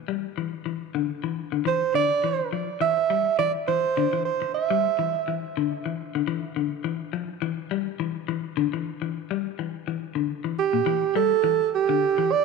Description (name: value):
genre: afrobeat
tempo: 104 BPM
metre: 4/4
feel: swing 55% on 16ths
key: C major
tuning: A4 = 439 Hz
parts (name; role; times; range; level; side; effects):
- clean electric guitar; arpeggios; 0.1-12.3 s; Bb2 to G3; -28 LUFS; left 13 dB; spring reverb
- mellow alto saxophone; melody; 1.7-5.4, 10.6-12.4 s; G4 to E5; -22 LUFS; right 9 dB; tape echo
room: moderate echo chamber reverb, RT60 2.1 s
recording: 1960s-style stereo with parts hard left and right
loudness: -23 LUFS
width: side -4 dB against mid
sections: 0.0-10.9 A section; 10.9-12.4 B section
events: none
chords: 0.0 N.C.; 10.9 C (rootless)